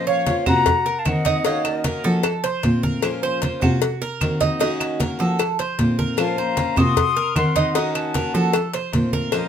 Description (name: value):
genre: latin, Cuban son and guajira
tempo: 152 BPM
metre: 4/4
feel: straight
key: Bb harmonic minor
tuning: A4 = 440 Hz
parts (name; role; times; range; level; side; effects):
- silver concert flute; melody; 0.0-2.4, 6.2-9.5 s; Eb5 to Eb6; -24 LUFS; left 6 dB; none
- breathy bright concert flute; second line; 0.0-2.2, 6.2-9.5 s; Bb4 to C6; -29 LUFS; left 4 dB; none
- picked steel-string acoustic guitar; accompaniment; 0.0-9.5 s; Eb3 to C5; -27 LUFS; left 2 dB; none
- rich cello; bass; 0.0-9.5 s; Bb2 to F3; -23 LUFS; equal; none
- Cuban tres; arpeggios; 0.1-9.5 s; Eb4 to Db5; -25 LUFS; right 7 dB; none
- congas; percussion; 0.1-9.5 s; none; -25 LUFS; right 1 dB; none
- cowbell; percussion; 0.3-9.5 s; none; -25 LUFS; left 7 dB; none
- claves; percussion; 0.5-9.5 s; none; -29 LUFS; right 5 dB; none
room: moderate studio reverb, RT60 0.6 s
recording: minimal, uncompressed stereo recording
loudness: -18 LUFS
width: side -8 dB against mid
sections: 0.0-9.5 A section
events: none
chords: 0.0 Bbmadd9; 0.7 Cm7b5; 1.5 Ebm7; 2.2 F7; 3.0 Bbmadd9; 3.8 Cm7b5; 4.6 Ebm7; 5.4 F7; 6.2 Bbmadd9; 7.0 Cm7b5; 7.8 Ebm7; 8.5 F7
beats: 0.27 0.66 1.06 | 1.45 1.85 2.24 2.64 | 3.03 3.43 3.82 4.21 | 4.61 5.00 5.39 5.79 | 6.18 6.58 6.97 7.36 | 7.75 8.15 8.54 8.93 | 9.32